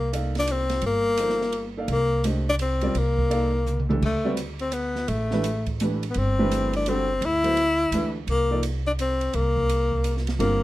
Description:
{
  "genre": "modal jazz",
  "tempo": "170 BPM",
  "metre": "3/4",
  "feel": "swing 64% on 8ths",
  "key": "unclear",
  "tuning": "A4 = 440 Hz",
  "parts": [
    { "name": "breathy tenor saxophone", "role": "melody", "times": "0.0-10.6 s", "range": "A3 to E4", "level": "-24 LUFS", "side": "left 2 dB", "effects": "none" },
    { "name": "upright bass", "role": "bass", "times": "0.0-10.6 s", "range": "G1 to D2", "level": "-27 LUFS", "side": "equal", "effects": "none" },
    { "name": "warm upright piano", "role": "accompaniment", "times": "0.1-10.6 s", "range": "D3 to F5", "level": "-27 LUFS", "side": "right 2 dB", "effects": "none" },
    { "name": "open jazz drum kit", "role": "drums", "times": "0.1-10.5 s", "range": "crash cymbal, hi-hat, kick drum, ride cymbal, snare drum, toms", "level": "-34 LUFS", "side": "right 3 dB", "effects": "none" }
  ],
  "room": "little or no reverb",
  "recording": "close, detailed microphones",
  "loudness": "-22 LUFS",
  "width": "side -16 dB against mid",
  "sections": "0.0-10.6 A section",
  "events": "drum fill 3.7-4.0",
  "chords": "0.0 C9sus4; 4.0 D9sus4; 8.3 C9sus4"
}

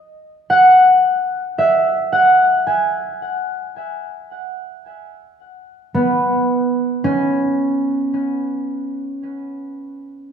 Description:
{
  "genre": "ambient",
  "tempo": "55 BPM",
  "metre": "4/4",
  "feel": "straight",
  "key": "C# minor",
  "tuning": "A4 = 440 Hz",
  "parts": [
    { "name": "concert harp", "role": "solo", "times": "0.0-10.2 s", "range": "B3 to G#5", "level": "-15 LUFS", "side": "equal", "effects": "ping-pong delay" }
  ],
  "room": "wet scoring stage reverb, RT60 1.8 s, studio ambience",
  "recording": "none",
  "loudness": "-14 LUFS",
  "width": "side -8 dB against mid",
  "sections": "0.0-10.3 A section",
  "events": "none",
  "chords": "0.0 C#m7"
}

